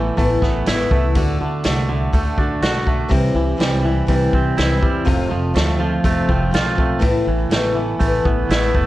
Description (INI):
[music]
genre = folk rock and heartland rock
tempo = 122 BPM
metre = 4/4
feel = straight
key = unclear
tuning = A4 = 442 Hz
[part]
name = picked steel-string acoustic guitar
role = accompaniment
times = 0.0-8.9 s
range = F2 to F#4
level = -21 LUFS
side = left 3 dB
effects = none
[part]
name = twangy electric guitar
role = riff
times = 0.0-8.9 s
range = F2 to F#4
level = -22 LUFS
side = right 4 dB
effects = spring reverb
[part]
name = upright bass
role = bass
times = 0.0-8.9 s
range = F1 to D2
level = -22 LUFS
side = equal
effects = none
[part]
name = vintage drum kit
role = drums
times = 0.2-8.9 s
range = hi-hat, kick drum, snare drum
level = -20 LUFS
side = equal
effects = none
[sound]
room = light reverb, studio reverb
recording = worn, warbling old tape, cassette tape, warbly pitch drift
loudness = -15 LUFS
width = side -16 dB against mid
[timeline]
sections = 0.0-8.9 A section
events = none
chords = 0.0 Asus2; 1.2 D; 3.1 C; 5.1 F; 7.0 Asus2